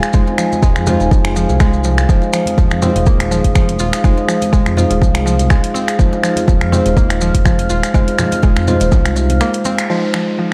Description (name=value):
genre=afro house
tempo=123 BPM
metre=4/4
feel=swing 55% on 16ths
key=F minor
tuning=A4 = 439 Hz
part: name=dark analog pad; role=sustained chords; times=0.0-10.5 s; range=Eb4 to F6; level=-25 LUFS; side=equal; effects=chorus, sidechain pumping
part: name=bell-like tine electric piano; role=stabs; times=0.0-10.5 s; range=Ab3 to C5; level=-21 LUFS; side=equal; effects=phaser, sidechain pumping, tape echo
part: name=afro-pop drum kit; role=drums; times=0.0-10.2 s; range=finger snaps, hi-hat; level=-25 LUFS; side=equal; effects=studio reverb
part: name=maracas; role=percussion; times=0.0-9.9 s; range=none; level=-32 LUFS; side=equal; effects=none
part: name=mallet-like synth pluck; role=arpeggios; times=0.1-10.5 s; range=C3 to F4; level=-24 LUFS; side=equal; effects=chorus, sidechain pumping, tape echo
part: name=smooth gliding synth bass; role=bass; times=0.1-9.4 s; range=Eb1 to F2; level=-20 LUFS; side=equal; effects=sidechain pumping
part: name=electronic kick drum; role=drums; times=0.1-9.0 s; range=none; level=-15 LUFS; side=equal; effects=overdrive, studio reverb
part: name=congas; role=percussion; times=0.3-9.8 s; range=none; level=-26 LUFS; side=equal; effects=none
part: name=downlifter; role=sound effects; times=9.9-10.5 s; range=none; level=-32 LUFS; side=equal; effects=none
room=light reverb, digital ambience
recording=dark, warm production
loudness=-14 LUFS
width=mono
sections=0.0-9.9 A section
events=break 9.4-9.9; band accent 9.8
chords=0.0 Fm7